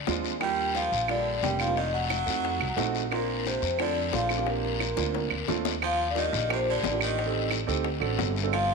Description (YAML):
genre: Afro-Cuban jazz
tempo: 178 BPM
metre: 4/4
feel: straight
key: Bb major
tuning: A4 = 439 Hz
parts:
  - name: upright bass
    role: bass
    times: 0.0-8.7 s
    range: F1 to F2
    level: -33 LUFS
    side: left 1 dB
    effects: none
  - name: dark baby grand piano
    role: accompaniment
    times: 0.1-8.5 s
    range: G3 to A4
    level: -32 LUFS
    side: right 10 dB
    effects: none
  - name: bongos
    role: percussion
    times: 0.1-8.7 s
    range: none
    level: -37 LUFS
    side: left 12 dB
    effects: none
  - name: guiro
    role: percussion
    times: 0.1-8.7 s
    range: none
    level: -35 LUFS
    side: left 13 dB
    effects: none
  - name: vibraphone with medium mallets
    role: melody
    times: 0.4-8.7 s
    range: Bb4 to G5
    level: -30 LUFS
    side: left 3 dB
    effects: none
  - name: growling baritone saxophone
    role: second line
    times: 0.4-8.7 s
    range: Bb2 to G3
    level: -35 LUFS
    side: right 7 dB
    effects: none
  - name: claves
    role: percussion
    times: 0.4-8.7 s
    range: none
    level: -36 LUFS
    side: right 10 dB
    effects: none
room: moderate echo chamber reverb, RT60 2.0 s, small room ambience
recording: 1960s-style stereo with parts hard left and right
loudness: -25 LUFS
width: side -4 dB against mid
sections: 0.0-5.8 A section; 5.8-8.7 B section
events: drum fill 5.0-5.8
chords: 0.4 Ebmaj7; 1.8 F7b9; 3.1 Bbmaj7; 5.8 Ebmaj7; 7.2 Am7b5; 7.9 D7